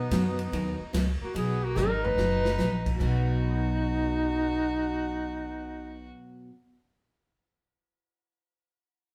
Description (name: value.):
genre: country, western swing.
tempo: 145 BPM.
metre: 4/4.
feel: swing 66% on 8ths.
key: B major.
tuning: A4 = 440 Hz.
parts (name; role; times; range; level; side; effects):
warm duduk; melody; 0.0-6.1 s; B3 to B4; -32 LUFS; equal; none.
rich fiddle; second line; 0.0-6.1 s; A#3 to F#4; -41 LUFS; equal; none.
dark upright piano; accompaniment; 0.0-6.8 s; B2 to F#7; -45 LUFS; equal; none.
upright bass; bass; 0.0-6.1 s; F#1 to F#2; -33 LUFS; equal; none.
picked steel-string acoustic guitar; accompaniment; 0.1-6.5 s; B2 to F#4; -36 LUFS; equal; none.
swinging big-band drum kit; drums; 0.1-3.1 s; crash cymbal, hi-hat, kick drum, ride cymbal, snare drum, toms; -37 LUFS; equal; none.
room: moderate stone room reverb, RT60 1.0 s.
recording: band playing live in one room.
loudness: -28 LUFS.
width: mono.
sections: 0.0-1.4 A section; 1.4-3.0 B section; 3.0-6.3 C section.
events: drum fill 1.8-2.6.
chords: 0.0 B.